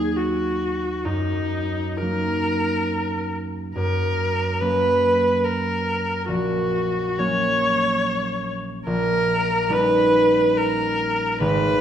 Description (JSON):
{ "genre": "classical, romantic duo for viola and harp", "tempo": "61-73 BPM", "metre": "3/4", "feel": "rubato", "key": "unclear", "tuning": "A4 = 440 Hz", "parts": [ { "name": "rich viola", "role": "melody", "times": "0.0-11.8 s", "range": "Eb4 to Db5", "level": "-21 LUFS", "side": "equal", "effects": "none" }, { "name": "concert harp", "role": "accompaniment", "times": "0.0-11.8 s", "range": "G#1 to Eb4", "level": "-24 LUFS", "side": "right 1 dB", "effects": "none" } ], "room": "wet scoring stage reverb, RT60 1.5 s", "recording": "minimal, uncompressed stereo recording", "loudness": "-19 LUFS", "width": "side -9 dB against mid", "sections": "0.0-11.8 A section", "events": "none", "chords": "0.0 Ebm; 1.1 Ebm/Gb; 3.8 Gb; 6.3 Gb/Bb; 8.9 D#7/A#", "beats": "0.18 | 1.06 2.01 2.89 | 3.76 4.61 5.45 | 6.27 7.18 8.03 | 8.87 9.70 10.55 | 11.40" }